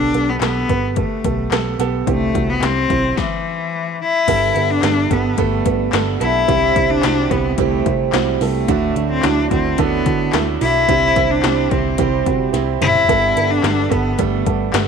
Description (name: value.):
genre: piano-driven pop.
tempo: 109 BPM.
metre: 4/4.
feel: straight.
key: unclear.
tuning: A4 = 442 Hz.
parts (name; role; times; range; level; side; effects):
warm cello; melody; 0.0-14.7 s; E3 to E4; -18 LUFS; left 4 dB; none.
warm upright piano; accompaniment; 0.0-14.9 s; G2 to B4; -21 LUFS; right 12 dB; none.
vintage muted picked electric bass; bass; 0.0-14.9 s; F#1 to D3; -22 LUFS; left 1 dB; none.
80s electronic pad drums; drums; 0.1-14.9 s; crash cymbal, handclaps, hi-hat, kick drum, snare drum, toms; -23 LUFS; left 5 dB; gated reverb on snare and toms.
fingerpicked steel-string acoustic guitar; riff; 4.3-14.9 s; C3 to A4; -22 LUFS; right 14 dB; none.
room: light reverb, small room ambience.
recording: 1960s-style stereo.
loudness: -14 LUFS.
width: side -6 dB against mid.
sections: 0.0-4.3 A section; 4.3-14.9 B section.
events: stop 3.2-4.3; drum fill 12.5-13.1.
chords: 0.0 Gadd9; 2.1 C; 4.3 Gadd9; 6.5 C; 8.7 Dadd9; 10.9 C; 13.1 Gadd9.